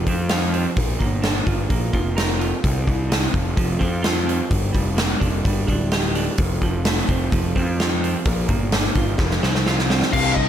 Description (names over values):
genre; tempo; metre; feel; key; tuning
quiet-loud alternative rock; 128 BPM; 4/4; straight; unclear; A4 = 440 Hz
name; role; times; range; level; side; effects
semi-hollow electric guitar; arpeggios; 0.0-10.5 s; C2 to Bb4; -26 LUFS; right 5 dB; none
fuzz picked electric bass; bass; 0.0-10.5 s; D1 to F2; -22 LUFS; equal; overdrive
huge arena drum kit; drums; 0.1-10.5 s; crash cymbal, hi-hat, kick drum, snare drum; -21 LUFS; equal; none
smooth overdriven lead guitar; melody; 10.1-10.5 s; Eb5 to F5; -21 LUFS; left 2 dB; none
thick fuzz guitar; riff; 10.1-10.5 s; C2 to C3; -22 LUFS; left 16 dB; distortion
room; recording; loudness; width
little or no reverb; none; -18 LUFS; side -10 dB against mid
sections
0.0-10.1 A section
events
drum fill 9.2-10.1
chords
0.0 F; 0.8 Bb; 2.6 C5; 3.3 F5; 4.5 Gm; 6.4 F; 8.3 Bb; 9.2 F5